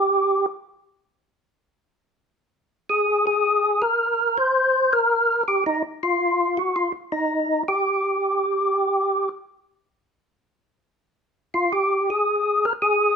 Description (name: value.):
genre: jazz.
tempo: 109 BPM.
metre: 4/4.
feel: swing 67% on 8ths.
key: unclear.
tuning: A4 = 440 Hz.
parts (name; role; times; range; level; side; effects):
percussive tonewheel organ; solo; 0.0-13.2 s; Eb4 to C5; -19 LUFS; equal; slow rotary speaker, overdrive, chorus vibrato.
room: moderate studio reverb, RT60 0.8 s.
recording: minimal, uncompressed stereo recording.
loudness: -19 LUFS.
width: side -6 dB against mid.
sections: 0.0-13.2 A section.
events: none.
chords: none.